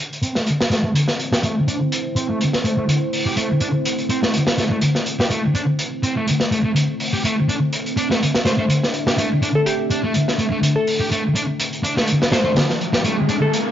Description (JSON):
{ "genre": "breakbeat, breaks", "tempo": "124 BPM", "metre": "4/4", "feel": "swing 54% on 16ths", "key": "A minor", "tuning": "A4 = 439 Hz", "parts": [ { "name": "deep dark ambient pad", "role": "sustained chords", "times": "1.0-13.7 s", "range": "A3 to E5", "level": "-26 LUFS", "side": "equal", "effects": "chorus, built-in reverb" }, { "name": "crunchy breakbeat drum kit", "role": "drums", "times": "0.1-13.7 s", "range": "hi-hat, snare drum", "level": "-22 LUFS", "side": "equal", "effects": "high-pass filter on kick, high-pass filter on hats, high-pass filter on snare, high-pass filter on room" }, { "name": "thick fuzz guitar", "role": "riff", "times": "0.2-13.3 s", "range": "A3 to G4", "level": "-20 LUFS", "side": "equal", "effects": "distortion, tube saturation, low-pass filter, digital delay" }, { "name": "glassy wavetable pluck", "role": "melody", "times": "8.5-13.5 s", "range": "G4 to C5", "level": "-23 LUFS", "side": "left 1 dB", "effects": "chorus, AM radio sound, digital delay" }, { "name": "riser", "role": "sound effects", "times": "11.9-13.7 s", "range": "none", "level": "-25 LUFS", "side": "left 1 dB", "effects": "none" } ], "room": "moderate studio reverb, RT60 0.6 s", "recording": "dark, warm production, nothing above 7.5 kHz", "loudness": "-17 LUFS", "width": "side -10 dB against mid", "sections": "0.0-13.7 A section", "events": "filter sweep on distorted electric guitar 0.0-13.7; riser 11.9-13.7", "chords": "0.0 Am" }